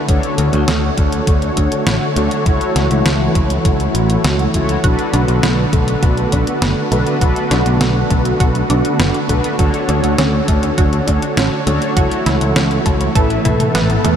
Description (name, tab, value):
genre	synthwave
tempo	101 BPM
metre	4/4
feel	straight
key	B minor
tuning	A4 = 438 Hz
part	analog string pad	sustained chords	0.0-14.2 s	D3 to C#5	-20 LUFS	right 2 dB	ensemble chorus, sidechain pumping
part	mellow synth brass	stabs	0.0-14.0 s	D4 to E5	-20 LUFS	left 2 dB	chorus, ping-pong delay
part	picked electric bass	bass	0.1-14.2 s	F#1 to A2	-17 LUFS	equal	tube saturation, sidechain pumping
part	detuned 8-bit digital drum machine	drums	0.1-14.2 s	hi-hat, snare drum, toms	-22 LUFS	equal	none
part	electronic kick drum	drums	0.1-13.6 s	none	-16 LUFS	equal	none
part	analog pluck	arpeggios	4.8-14.2 s	A3 to A4	-22 LUFS	right 1 dB	chorus, ping-pong delay
part	swell	sound effects	13.4-14.2 s	none	-24 LUFS	right 3 dB	none
room	moderate huge ambient reverb, RT60 7.8 s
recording	dreamy mix soaked in reverb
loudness	-13 LUFS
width	side -8 dB against mid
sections	0.0-14.2 A section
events	drum fill 13.5-14.2; kick drops out 13.7-14.2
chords	0.1 Dmaj7; 2.5 F#m7/C#; 4.8 Bm7; 9.6 Dmaj7; 12.0 F#m7/C#; 13.2 Asus2